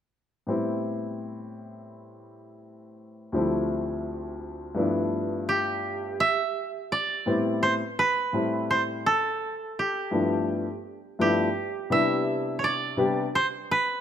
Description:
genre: hip hop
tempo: 84 BPM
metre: 4/4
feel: swing 61% on 16ths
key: A minor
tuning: A4 = 440 Hz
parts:
  - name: dark grand piano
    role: accompaniment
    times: 0.5-13.3 s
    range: D2 to G4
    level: -27 LUFS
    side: left 2 dB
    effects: none
  - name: koto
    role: melody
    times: 5.5-14.0 s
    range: G4 to E5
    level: -26 LUFS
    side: right 3 dB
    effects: none
room: light reverb, small room ambience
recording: rough home demo mix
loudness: -24 LUFS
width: side -9 dB against mid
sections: 0.5-6.2 A section; 6.2-14.0 B section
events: none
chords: 0.5 Am9; 3.3 Dm11; 4.8 G13; 6.2 Am9; 9.0 G13; 11.9 Cmaj9

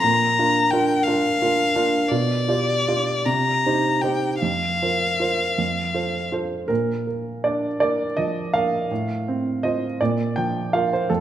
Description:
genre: classical, romantic duo for violin and grand piano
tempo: 50-59 BPM (dotted quarters)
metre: 6/8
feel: rubato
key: Bb major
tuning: A4 = 440 Hz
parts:
  - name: warm violin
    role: melody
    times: 0.0-6.3 s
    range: D5 to Bb5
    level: -21 LUFS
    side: left 3 dB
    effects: none
  - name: clear grand piano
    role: accompaniment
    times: 0.0-11.2 s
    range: F2 to G5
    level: -21 LUFS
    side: right 2 dB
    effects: none
room: wet recital hall reverb, RT60 1.5 s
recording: none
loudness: -19 LUFS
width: side -11 dB against mid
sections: 0.0-6.7 A section; 6.7-11.2 B section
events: none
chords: 0.0 Bb; 2.1 G7/B; 3.3 Cm7; 4.4 Fsus4; 5.6 F; 6.7 Bb; 8.9 F/A; 10.0 Bb5

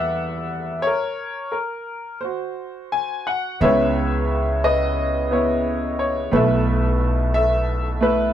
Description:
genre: acoustic folk-pop ballad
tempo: 88 BPM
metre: 4/4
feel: straight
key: C# minor from 3.6 s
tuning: A4 = 438 Hz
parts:
  - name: clear upright piano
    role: melody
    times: 0.0-8.3 s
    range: B1 to G#5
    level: -20 LUFS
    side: equal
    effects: none
  - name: upright bass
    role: bass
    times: 0.0-8.3 s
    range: B1 to E2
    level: -24 LUFS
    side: equal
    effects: none
room: moderate studio ambience, RT60 0.4 s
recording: band playing live in one room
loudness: -19 LUFS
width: side -10 dB against mid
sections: 0.0-3.6 A section; 3.6-8.3 B section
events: none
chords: 0.0 Em7; 0.9 N.C.; 3.6 C#m7; 6.3 B7sus4

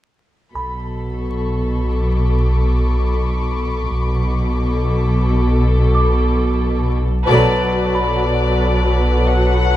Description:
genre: cinematic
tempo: 89 BPM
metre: 5/4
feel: straight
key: B minor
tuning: A4 = 440 Hz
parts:
  - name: muted chamber violin section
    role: melody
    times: 0.5-9.8 s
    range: A4 to F#5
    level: -24 LUFS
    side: left 4 dB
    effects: none
  - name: muted chamber cello section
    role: bass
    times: 0.5-9.8 s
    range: B2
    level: -22 LUFS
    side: right 1 dB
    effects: none
  - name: muted chamber double bass section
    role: bass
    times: 0.5-9.8 s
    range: B1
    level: -23 LUFS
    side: right 1 dB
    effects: none
  - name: pure sine sub bass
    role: drone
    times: 0.5-9.8 s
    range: B1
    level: -19 LUFS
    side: equal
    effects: none
  - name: muted chamber violin section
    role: texture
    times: 0.5-6.9 s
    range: B5 to D6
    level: -30 LUFS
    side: left 3 dB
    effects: none
  - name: music box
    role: texture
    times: 0.6-9.8 s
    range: B5 to D6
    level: -27 LUFS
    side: right 2 dB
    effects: none
  - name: muted chamber violin section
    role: second line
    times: 7.3-9.8 s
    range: A4 to B4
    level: -20 LUFS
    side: left 2 dB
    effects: none
  - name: muted chamber viola section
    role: accompaniment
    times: 7.3-9.8 s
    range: F#3 to F#4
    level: -21 LUFS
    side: equal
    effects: none
room: moderate concert hall reverb, RT60 2.3 s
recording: vinyl crackle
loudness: -15 LUFS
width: side -13 dB against mid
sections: 0.5-7.3 A section; 7.3-9.8 B section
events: band accent 7.3-8.0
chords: 0.5 Bm7

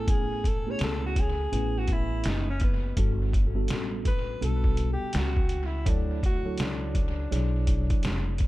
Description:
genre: hip hop, jazz-hop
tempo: 83 BPM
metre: 4/4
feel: swing 63% on 16ths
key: unclear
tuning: A4 = 441 Hz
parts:
  - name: breathy alto saxophone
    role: melody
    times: 0.0-8.4 s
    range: B3 to C#5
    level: -34 LUFS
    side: equal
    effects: tape echo
  - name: mellow tine electric piano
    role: accompaniment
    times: 0.0-8.3 s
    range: F#3 to G#5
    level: -34 LUFS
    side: equal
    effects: medium stereo tremolo, tape echo
  - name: upright bass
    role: bass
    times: 0.0-8.5 s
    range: E#1 to D2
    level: -29 LUFS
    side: equal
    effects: none
  - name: trip hop sampler-style drum kit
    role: drums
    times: 0.1-8.5 s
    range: hi-hat, kick drum, snare drum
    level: -27 LUFS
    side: equal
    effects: none
room: little or no reverb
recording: echo-heavy mix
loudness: -24 LUFS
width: side -17 dB against mid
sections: 0.0-8.5 A section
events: alto saxophone solo 0.0-8.5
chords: 0.0 Amaj9; 3.0 Gmaj9; 5.9 Dmaj9

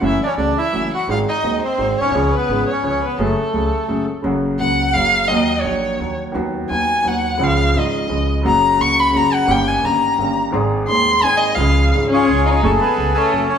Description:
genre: tango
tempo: 171 BPM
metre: 3/4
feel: rubato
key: F# minor, F# major from 4.2 s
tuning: A4 = 441 Hz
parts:
  - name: bandoneon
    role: melody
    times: 0.0-4.1, 12.1-13.6 s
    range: A3 to D#5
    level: -19 LUFS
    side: equal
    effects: none
  - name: warm violin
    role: second line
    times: 0.0-13.6 s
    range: A3 to C#6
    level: -18 LUFS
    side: left 1 dB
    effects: none
  - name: clear upright piano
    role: accompaniment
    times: 0.0-13.5 s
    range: D#1 to G#4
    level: -20 LUFS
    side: equal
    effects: none
  - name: upright bass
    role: bass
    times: 0.0-13.5 s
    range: F#1 to D#2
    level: -23 LUFS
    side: right 1 dB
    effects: none
room: wet stone room reverb, RT60 1.3 s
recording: band playing live in one room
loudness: -15 LUFS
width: side -8 dB against mid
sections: 0.0-4.2 A section; 4.2-12.6 B section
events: violin solo 4.2-12.6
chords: 0.0 F#m7; 1.1 G#7; 2.1 C#; 3.2 F#madd9; 4.2 F#; 5.3 D#m; 6.3 B/D#; 7.4 C#; 8.4 F#; 9.5 D#7/G; 10.5 G#; 11.6 C#; 12.6 F#madd9

